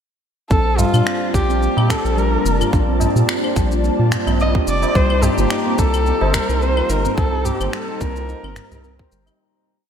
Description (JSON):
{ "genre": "organic downtempo", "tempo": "108 BPM", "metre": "4/4", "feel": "swing 55% on 16ths", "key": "C dorian", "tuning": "A4 = 440 Hz", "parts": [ { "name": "warm kamancheh", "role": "melody", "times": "0.5-9.1 s", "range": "F4 to Eb5", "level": "-22 LUFS", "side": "equal", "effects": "ping-pong delay, shimmer reverb" }, { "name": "ethereal airy pad", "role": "sustained chords", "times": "1.3-9.4 s", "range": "Bb3 to A5", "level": "-25 LUFS", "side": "equal", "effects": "ensemble chorus, built-in reverb, tremolo, sidechain pumping, shimmer reverb" }, { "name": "handpan", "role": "arpeggios", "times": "0.5-9.4 s", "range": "G3 to C5", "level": "-23 LUFS", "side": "equal", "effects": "low-pass filter, ping-pong delay, shimmer reverb" }, { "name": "round analog bass", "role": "bass", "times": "0.5-9.3 s", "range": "F1 to Bb2", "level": "-19 LUFS", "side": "equal", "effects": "sidechain pumping" }, { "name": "electronic kick drum", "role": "drums", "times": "0.5-9.1 s", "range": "none", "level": "-19 LUFS", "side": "equal", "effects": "overdrive" }, { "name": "electronic shaker, claves and finger snaps", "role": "drums", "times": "0.5-9.4 s", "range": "none", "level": "-27 LUFS", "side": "left 1 dB", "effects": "none" }, { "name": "tabla", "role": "percussion", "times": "0.8-9.4 s", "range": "none", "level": "-28 LUFS", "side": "right 2 dB", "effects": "none" } ], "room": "moderate lush hall reverb, RT60 2.5 s", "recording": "dreamy mix soaked in reverb", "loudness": "-15 LUFS", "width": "side -8 dB against mid", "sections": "0.5-9.4 groove", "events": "filter sweep on handpan 0.5-9.4; fade-out 6.4-9.4", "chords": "0.5 Bbmaj7; 5.0 Cm7" }